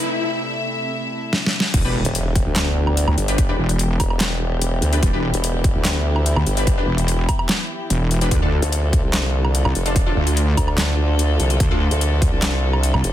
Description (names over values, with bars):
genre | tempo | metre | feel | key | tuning
heavy wobble dubstep | 146 BPM | 4/4 | half-time | E phrygian | A4 = 441 Hz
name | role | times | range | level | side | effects
warm studio string section | sustained chords | 0.0-13.1 s | C3 to E5 | -28 LUFS | equal | sidechain pumping
riser and impact | sound effects | 0.0-3.4 s | none | -27 LUFS | left 1 dB | none
dubstep drum kit | drums | 1.3-13.1 s | crash cymbal, handclaps, hi-hat, snare drum, woodblock | -23 LUFS | equal | overdrive, studio reverb
wobble bass | bass | 1.7-13.0 s | E1 to D2 | -18 LUFS | equal | chorus, overdrive
electronic kick drum | drums | 1.7-12.3 s | none | -20 LUFS | equal | studio reverb
orchestra-hit-like synth stab | stabs | 1.8-11.8 s | D4 to B4 | -27 LUFS | left 1 dB | built-in reverb, tape echo
formant-sweep wobble bass | bass | 2.0-13.1 s | E1 to D2 | -20 LUFS | equal | chorus, overdrive
room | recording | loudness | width
digital ambience | dense, heavily limited modern master | -17 LUFS | side -12 dB against mid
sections
0.0-1.7 A section; 1.7-13.1 B section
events
build-up 0.0-1.7; drum fill 1.3-1.7; drop 1.7-13.1; impact 1.7-3.4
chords
0.0 Am/C; 1.7 Em7; 8.3 Dm